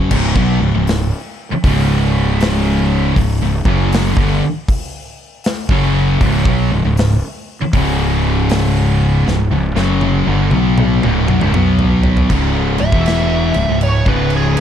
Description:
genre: stoner and doom metal.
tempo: 79 BPM.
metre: 4/4.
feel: swing 65% on 8ths.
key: C# minor.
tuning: A4 = 440 Hz.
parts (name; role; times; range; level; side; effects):
thick fuzz guitar; riff; 0.0-14.6 s; C#2 to B3; -19 LUFS; left 9 dB; distortion.
thick fuzz guitar; riff; 0.0-14.6 s; C#2 to B3; -19 LUFS; right 7 dB; distortion.
high-gain distorted guitar; riff; 0.1-14.6 s; C#2 to B3; -21 LUFS; equal; distortion.
fuzz fingered electric bass; bass; 0.1-14.5 s; C#1 to B1; -18 LUFS; equal; overdrive.
big rock drum kit; drums; 0.1-14.6 s; crash cymbal, hi-hat, kick drum, snare drum, toms; -19 LUFS; equal; none.
fuzz lead guitar; melody; 12.8-14.6 s; G#4 to E5; -19 LUFS; right 1 dB; wah, distortion, digital delay.
room: small room ambience.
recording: dark, warm production.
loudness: -12 LUFS.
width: side -9 dB against mid.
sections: 0.1-12.3 A section; 12.3-14.6 B section.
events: drum fill 9.3-12.3; lead electric guitar solo 12.3-14.6.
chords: 0.1 C#5; 11.5 B5; 12.3 C#m.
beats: | 0.12 0.88 1.64 2.41 | 3.17 3.93 4.70 5.46 | 6.22 6.98 7.74 8.51 | 9.27 10.03 10.79 11.55 | 12.31 13.07 13.83 14.59.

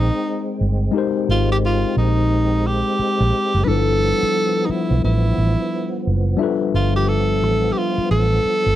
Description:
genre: R&B, neo-soul.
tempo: 88 BPM.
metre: 4/4.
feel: swing 61% on 16ths.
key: unclear.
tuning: A4 = 438 Hz.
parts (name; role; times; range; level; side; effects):
breathy tenor saxophone; melody; 0.0-8.8 s; Eb4 to B4; -21 LUFS; right 2 dB; slapback echo.
tine electric piano; accompaniment; 0.0-8.8 s; F3 to G5; -23 LUFS; left 9 dB; none.
tonewheel organ; sustained chords; 0.0-8.8 s; F3 to C4; -28 LUFS; right 3 dB; overdrive, chorus vibrato, slow rotary speaker.
vintage muted fingered electric bass; bass; 0.0-8.8 s; F#1 to B1; -18 LUFS; right 1 dB; none.
room: little or no reverb.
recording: dry, close 1970s-style studio recording.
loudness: -16 LUFS.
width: side -13 dB against mid.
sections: 0.0-8.8 A section.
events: none.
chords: 0.0 Abmaj9; 3.7 G13.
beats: 0.26 | 0.94 1.62 2.30 2.98 | 3.67 4.35 5.03 5.71 | 6.39 7.08 7.76 8.44.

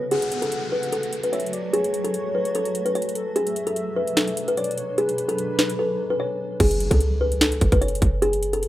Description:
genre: hip hop, trap.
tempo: 148 BPM.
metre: 4/4.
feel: half-time.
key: F# minor.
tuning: A4 = 440 Hz.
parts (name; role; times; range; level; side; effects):
kalimba; melody; 0.0-8.6 s; G#4 to C#5; -24 LUFS; left 1 dB; low-pass filter.
warm velvety synth lead; second line; 0.0-6.6 s; A4 to F#5; -31 LUFS; right 1 dB; chorus, digital delay.
granular cloud pad; sustained chords; 0.0-6.6 s; B2 to F#4; -33 LUFS; right 1 dB; built-in reverb.
trap drum kit; drums; 0.1-8.7 s; crash cymbal, hi-hat, kick drum, snare drum; -23 LUFS; equal; none.
downlifter and impact; sound effects; 0.1-3.4, 6.8-8.2 s; none; -37 LUFS; equal; none.
clean 808-style bass; bass; 6.6-8.7 s; F#1 to C#2; -23 LUFS; equal; none.
room: little or no reverb.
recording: rough home demo mix.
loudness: -20 LUFS.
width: side -15 dB against mid.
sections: 0.1-6.6 A section; 6.6-8.7 B section.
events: break 5.8-6.6; impact 6.6-8.2.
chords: 0.1 F#m; 3.4 Bm; 6.6 F#5.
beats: | 0.11 0.52 0.93 1.33 | 1.74 2.14 2.55 2.95 | 3.36 3.76 4.17 4.57 | 4.98 5.38 5.79 6.20 | 6.60 7.01 7.41 7.82 | 8.22 8.63.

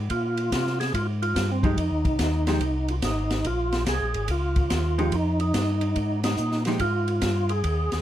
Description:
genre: soul jazz organ trio.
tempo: 143 BPM.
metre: 4/4.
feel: swing 66% on 8ths.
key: F minor.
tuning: A4 = 440 Hz.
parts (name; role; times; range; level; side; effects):
mellow tonewheel organ; bass; 0.0-8.0 s; Ab1 to C3; -26 LUFS; equal; overdrive, chorus vibrato, slow rotary speaker.
percussive tonewheel organ; melody; 0.1-8.0 s; C4 to Ab4; -27 LUFS; right 1 dB; overdrive, chorus vibrato, slow rotary speaker.
open jazz drum kit; drums; 0.1-8.0 s; hi-hat, kick drum, ride cymbal, snare drum; -29 LUFS; equal; none.
vintage hollow-body jazz guitar; accompaniment; 1.6-6.8 s; F3 to G4; -27 LUFS; right 1 dB; none.
room: light reverb.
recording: dark, warm production.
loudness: -22 LUFS.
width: side -12 dB against mid.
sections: 0.0-8.0 A section.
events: band accent 6.2.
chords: 0.1 Bbsus2; 1.8 Fm7; 3.4 Bbm9; 5.1 Fm9.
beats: | 0.10 0.52 0.94 1.36 | 1.77 2.19 2.61 3.03 | 3.45 3.87 4.29 4.70 | 5.12 5.54 5.96 6.38 | 6.80 7.22 7.64.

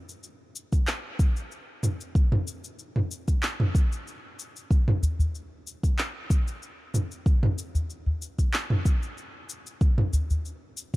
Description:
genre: downtempo.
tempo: 94 BPM.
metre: 4/4.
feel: swing 53% on 16ths.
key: none.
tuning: none.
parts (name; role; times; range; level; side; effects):
deep house drum kit; drums; 0.1-11.0 s; cabasa, handclaps, toms; -29 LUFS; equal; none.
electronic kick drum; drums; 0.7-11.0 s; none; -22 LUFS; equal; none.
udu; percussion; 5.0-10.4 s; none; -25 LUFS; equal; none.
room: little or no reverb.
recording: dark, warm production.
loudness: -24 LUFS.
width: side -20 dB against mid.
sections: 0.0-11.0 A section.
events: none.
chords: none.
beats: 0.24 0.87 1.51 | 2.15 2.79 3.43 4.07 | 4.70 5.34 5.98 6.62 | 7.26 7.90 8.53 9.17 | 9.81 10.45.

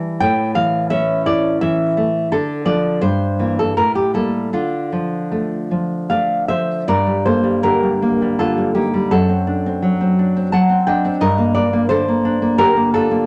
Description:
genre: romantic piece for solo classical guitar.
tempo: 76-87 BPM.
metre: 3/4.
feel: rubato.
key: D minor, G minor from 6.9 s.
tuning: A4 = 441 Hz.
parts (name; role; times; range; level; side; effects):
nylon-string guitar; solo; 0.0-13.3 s; F#2 to A5; -17 LUFS; equal; none.
room: moderate studio reverb, RT60 0.8 s.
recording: none.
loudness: -17 LUFS.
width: mono.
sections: 0.0-6.9 A section; 6.9-13.3 B section.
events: none.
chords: 0.2 A; 2.3 Dm; 3.0 Edim/G; 3.8 Gmadd9/A; 4.5 Dm; 6.9 Gm; 9.1 D7/F#; 11.2 Gm.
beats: | 0.21 0.91 1.61 | 2.31 3.02 3.76 | 4.53 5.31 6.10 | 6.88 7.65 8.40 | 9.12 9.84 10.54 | 11.23 11.91 12.61.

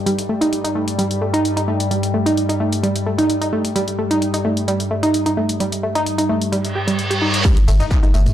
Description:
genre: driving peak-time techno.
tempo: 130 BPM.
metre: 4/4.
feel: straight.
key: unclear.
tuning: A4 = 440 Hz.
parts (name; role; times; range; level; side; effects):
deep dark ambient pad; drone; 0.0-8.3 s; G2 to G3; -23 LUFS; left 2 dB; chorus, built-in reverb, sidechain pumping.
analog pluck; riff; 0.1-8.2 s; G3 to G4; -19 LUFS; right 1 dB; chorus, tube saturation, sidechain pumping, digital delay.
punchy analog drum machine; drums; 0.1-8.3 s; crash cymbal, hi-hat, tambourine, toms; -27 LUFS; left 1 dB; none.
reverse cymbal and impact; sound effects; 6.7-8.3 s; none; -22 LUFS; right 1 dB; none.
electronic kick drum; drums; 7.4-8.0 s; none; -16 LUFS; equal; distortion, overdrive.
jazz brush drum kit; drums; 7.4-8.3 s; hi-hat, snare drum; -35 LUFS; right 1 dB; none.
saturated sub bass; bass; 7.6-8.3 s; G1; -16 LUFS; equal; tube saturation, sidechain pumping, low-pass filter.
room: moderate stone room reverb, RT60 1.4 s.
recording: dark, warm production.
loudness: -16 LUFS.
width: side -11 dB against mid.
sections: 0.0-7.4 A section.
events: reverse cymbal 6.7-7.4; impact 7.4-8.3.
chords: 0.0 N.C.; 7.4 Gsus2.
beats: | 0.06 0.53 0.99 1.45 | 1.91 2.37 2.83 3.29 | 3.76 4.22 4.68 5.14 | 5.60 6.06 6.53 6.99 | 7.45 7.91.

